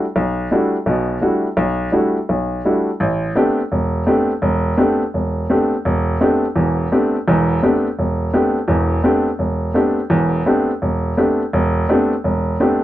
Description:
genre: jazz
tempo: 169 BPM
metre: 4/4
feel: swing 65% on 8ths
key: A minor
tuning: A4 = 440 Hz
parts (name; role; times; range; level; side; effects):
- clear upright piano; solo; 0.0-12.8 s; E1 to G4; -15 LUFS; equal; none
room: light reverb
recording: dark, warm production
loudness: -15 LUFS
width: side -14 dB against mid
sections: 0.0-3.0 A section; 3.0-12.8 B section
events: none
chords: 0.0 Em11; 3.0 Am11

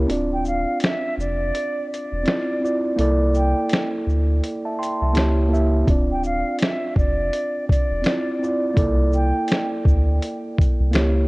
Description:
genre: lo-fi hip hop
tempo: 83 BPM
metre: 4/4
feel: swing 62% on 16ths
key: D minor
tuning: A4 = 439 Hz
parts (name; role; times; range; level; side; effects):
- mellow tine electric piano; accompaniment; 0.0-11.3 s; A#3 to C6; -23 LUFS; right 1 dB; cassette tape, low-pass filter
- warm sub bass; bass; 0.0-11.3 s; D1 to D2; -20 LUFS; equal; none
- dusty soul sampler-style drum kit; drums; 0.1-11.2 s; finger snaps, hi-hat, kick drum, shaker, snare drum; -21 LUFS; equal; none
- concert flute; melody; 0.3-9.7 s; D5 to G5; -27 LUFS; right 1 dB; low-pass filter, tape echo
room: moderate spring reverb, RT60 2.7 s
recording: cassette tape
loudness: -18 LUFS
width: side -23 dB against mid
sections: 0.0-11.3 A section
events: break 0.0-5.9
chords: 0.1 Dm9; 3.0 C13; 5.2 C#dim7; 5.9 Dm9; 8.8 C13

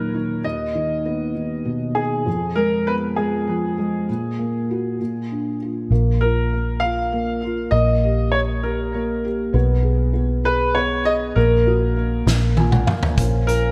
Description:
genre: six-eight pop ballad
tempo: 66 BPM (dotted quarters)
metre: 6/8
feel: straight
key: unclear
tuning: A4 = 439 Hz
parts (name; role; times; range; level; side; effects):
- clear grand piano; melody; 0.0-13.7 s; Ab4 to F5; -25 LUFS; equal; subtle chorus, digital delay
- felt-muted upright piano; accompaniment; 0.0-13.7 s; Eb2 to Ab5; -26 LUFS; equal; subtle chorus
- vintage muted fingered electric bass; bass; 5.9-13.7 s; Bb1 to Cb2; -22 LUFS; equal; none
- loose indie drum kit; drums; 12.3-13.6 s; hi-hat, kick drum, snare drum, toms; -22 LUFS; equal; none
- percussive tonewheel organ; sustained chords; 13.2-13.7 s; F3 to Db4; -30 LUFS; equal; overdrive, stopped rotary speaker
room: moderate lush hall reverb, RT60 2.4 s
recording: bright 1980s-style digital production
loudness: -20 LUFS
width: mono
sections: 0.0-5.9 A section; 5.9-13.7 B section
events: drum fill 12.3-13.2; felt piano fill 12.3-13.2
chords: 0.4 Abm/Eb (rootless); 2.3 Fdim; 4.1 Gbadd9/Bb; 5.0 Bb; 5.9 Bb5; 7.7 Eb/Bb; 9.5 Abm/Cb; 11.4 Gb/Bb; 12.3 Bb5; 13.2 Bbm

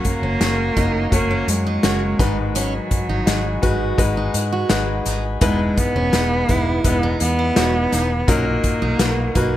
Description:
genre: piano-driven pop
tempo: 84 BPM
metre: 4/4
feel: straight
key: unclear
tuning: A4 = 436 Hz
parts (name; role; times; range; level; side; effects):
- warm cello; melody; 0.0-9.6 s; F#3 to B3; -22 LUFS; right 1 dB; none
- bright concert grand piano; accompaniment; 0.0-9.6 s; G#2 to D#5; -24 LUFS; left 3 dB; plate reverb
- mellow tonewheel organ; sustained chords; 0.0-9.6 s; E3 to C#6; -32 LUFS; equal; slow rotary speaker, plate reverb
- modern studio drum kit; drums; 0.0-9.5 s; hi-hat, kick drum, snare drum; -22 LUFS; equal; none
- picked steel-string acoustic guitar; riff; 0.2-9.6 s; B3 to F#4; -27 LUFS; right 4 dB; none
- vintage muted fingered electric bass; bass; 0.2-9.6 s; E1 to G#2; -23 LUFS; equal; none
room: light reverb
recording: none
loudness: -17 LUFS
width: side -13 dB against mid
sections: 0.0-9.6 A section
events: none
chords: 0.0 F#; 2.2 G#m7; 5.4 Emaj7; 8.3 Bmaj7

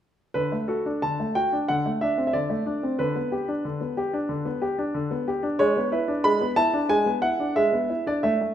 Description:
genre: classical-period piano sonatina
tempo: 92 BPM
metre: 4/4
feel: rubato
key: unclear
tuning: A4 = 440 Hz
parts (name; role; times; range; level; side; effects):
- clear grand piano; solo; 0.3-8.5 s; D3 to B5; -22 LUFS; equal; none
room: moderate recital hall reverb, RT60 1.5 s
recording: minimal, uncompressed stereo recording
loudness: -22 LUFS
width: side -10 dB against mid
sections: 0.3-8.5 A section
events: none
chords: 0.3 D; 1.7 D5; 3.0 G/D; 5.6 E7/G#

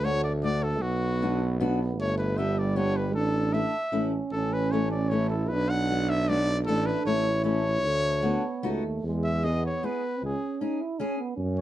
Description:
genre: alpine folk, alpine dance band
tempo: 154 BPM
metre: 3/4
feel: straight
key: unclear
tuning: A4 = 440 Hz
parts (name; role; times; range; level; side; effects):
- mellow trumpet; melody; 0.0-11.6 s; F#4 to F#5; -29 LUFS; left 1 dB; plate reverb
- warm euphonium; second line; 0.0-11.6 s; G3 to E4; -31 LUFS; right 5 dB; none
- fingerpicked steel-string acoustic guitar; accompaniment; 0.0-11.2 s; A3 to G#4; -31 LUFS; left 3 dB; none
- warm tuba; bass; 0.0-11.6 s; G1 to F#2; -28 LUFS; equal; none
room: light reverb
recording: dark, warm production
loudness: -24 LUFS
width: side -13 dB against mid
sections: 0.0-9.0 A section; 9.0-11.6 B section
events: none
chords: 0.0 D; 0.8 Bm; 2.0 G; 3.2 Asus4; 3.9 A; 5.5 Bm; 6.7 Asus4; 7.1 A; 7.8 D; 8.6 B7; 9.0 E; 10.2 C#m

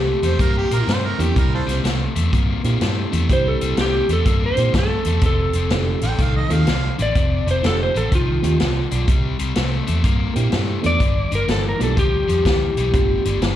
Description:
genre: electric blues shuffle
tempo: 124 BPM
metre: 4/4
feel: swing 66% on 8ths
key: C mixolydian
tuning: A4 = 440 Hz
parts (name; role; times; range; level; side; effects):
- electric slide guitar; melody; 0.0-13.4 s; F4 to D5; -22 LUFS; equal; slapback echo
- overdriven electric guitar; riff; 0.0-13.6 s; F2 to Bb3; -26 LUFS; left 8 dB; slapback echo
- vintage muted fingered electric bass; bass; 0.0-13.6 s; F1 to Bb2; -21 LUFS; right 1 dB; none
- clear harmonica; second line; 0.2-1.8, 6.0-6.9 s; F4 to G5; -26 LUFS; right 7 dB; overdrive, slapback echo
- vintage drum kit; drums; 0.2-13.6 s; hi-hat, kick drum, snare drum; -22 LUFS; equal; none
- mellow reed electric piano; accompaniment; 1.2-13.6 s; A3 to A4; -27 LUFS; right 6 dB; slapback echo
room: little or no reverb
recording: live gig heard through the venue's PA, club reverb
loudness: -16 LUFS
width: side -12 dB against mid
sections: 0.0-13.6 A section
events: none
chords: 0.0 C7; 5.2 F7; 9.1 C7; 11.0 G7

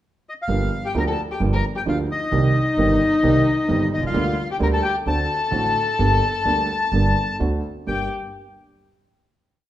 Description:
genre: tango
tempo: 130 BPM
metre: 4/4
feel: rubato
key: G minor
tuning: A4 = 440 Hz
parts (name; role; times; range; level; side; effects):
- bandoneon; melody; 0.3-8.1 s; Eb5 to Bb5; -24 LUFS; left 3 dB; none
- dark concert grand piano; accompaniment; 0.5-8.1 s; G1 to G4; -23 LUFS; right 3 dB; none
- upright bass; bass; 0.5-8.1 s; G1 to D2; -24 LUFS; right 1 dB; none
- dark violin; second line; 0.8-8.1 s; Eb4 to Bb4; -24 LUFS; left 2 dB; none
room: wet large studio reverb, RT60 1.3 s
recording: minimal, uncompressed stereo recording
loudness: -18 LUFS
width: side -13 dB against mid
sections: 0.0-0.5 pickup bar; 0.5-7.9 A section; 7.9-9.7 final chord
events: none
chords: 0.5 Gm7; 2.3 Cm7; 4.2 Gm/D; 5.1 D7; 6.0 Gm; 7.4 D7; 7.9 Gm

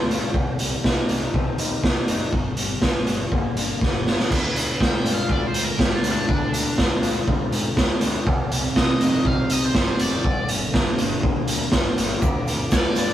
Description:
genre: indie rock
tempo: 121 BPM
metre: 4/4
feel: straight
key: unclear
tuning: A4 = 440 Hz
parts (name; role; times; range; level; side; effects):
- cranked stack guitar; melody; 0.0, 4.8-13.1 s; D4 to G5; -29 LUFS; equal; overdrive
- electric guitar through a small old amp; riff; 0.0-13.1 s; G2 to F4; -29 LUFS; left 5 dB; none
- growling picked electric bass; bass; 0.0-13.1 s; F1 to Ab2; -31 LUFS; equal; overdrive
- raw garage drum kit; drums; 0.1-13.1 s; crash cymbal, hi-hat, kick drum, snare drum; -20 LUFS; equal; none
- clean electric guitar; riff; 4.3-13.1 s; C4 to G4; -28 LUFS; right 2 dB; none
- overdriven combo organ; sustained chords; 12.2-13.1 s; F4 to D6; -34 LUFS; equal; none
- tube shaker; percussion; 12.2-13.1 s; none; -41 LUFS; right 7 dB; none
room: light reverb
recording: rough rehearsal-room recording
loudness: -19 LUFS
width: side -12 dB against mid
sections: 0.0-4.3 A section; 4.3-13.1 B section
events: drum fill 3.8-4.3; overdriven electric guitar solo 4.3-13.1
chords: 0.3 Cm; 2.3 Gm; 4.3 Ddim; 8.3 Cm; 10.3 Gm; 12.2 Ddim

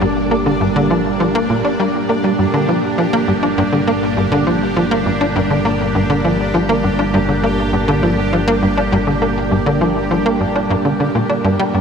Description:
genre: ambient, sequencer-driven space music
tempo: 101 BPM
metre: 4/4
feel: straight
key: G minor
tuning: A4 = 440 Hz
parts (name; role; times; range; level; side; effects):
- string machine, full ensemble; sustained chords; 0.0-11.8 s; G3 to D5; -18 LUFS; equal; ensemble chorus, shimmer reverb
- tight sequencer bass; riff; 0.0-11.8 s; G2 to D4; -16 LUFS; equal; analog chorus, ping-pong delay, shimmer reverb
- analog drone; bass; 0.0-11.8 s; G1; -25 LUFS; equal; chorus
- bubbling stepped-filter texture; texture; 0.0-11.8 s; D4 to D5; -24 LUFS; right 2 dB; chorus, built-in reverb, shimmer reverb
room: wet lush hall reverb, RT60 2.9 s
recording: none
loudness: -14 LUFS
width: side -6 dB against mid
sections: 0.0-11.8 A section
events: none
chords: 0.0 Gmadd9

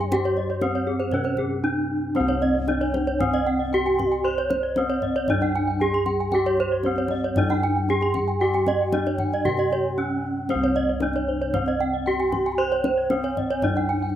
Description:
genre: Balinese gamelan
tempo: 115 BPM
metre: 4/4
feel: straight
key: C pelog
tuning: A4 = 440 Hz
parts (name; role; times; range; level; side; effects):
- gamelan-type bronze metallophone; melody; 0.0-14.2 s; C4 to C5; -24 LUFS; right 1 dB; plate reverb
- mellow hollow bansuri; second line; 0.0-14.2 s; C5 to C6; -35 LUFS; left 3 dB; plate reverb
- gamelan-type bronze metallophone; arpeggios; 0.0-14.0 s; C5 to C6; -27 LUFS; right 4 dB; plate reverb
- gamelan-type bossed gongs; bass; 0.0-14.2 s; C2 to C5; -27 LUFS; left 1 dB; none
- kendang; percussion; 0.0-13.8 s; none; -31 LUFS; left 2 dB; none
- gamelan-type bronze metallophone; arpeggios; 0.1-14.2 s; Ab4-40c to C6; -31 LUFS; left 6 dB; plate reverb
room: moderate studio reverb, RT60 0.5 s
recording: rough home demo mix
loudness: -21 LUFS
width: side -11 dB against mid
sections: 0.0-2.2 A section; 2.2-14.2 B section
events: drum fill 1.8-2.2; break 9.7-10.5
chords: none

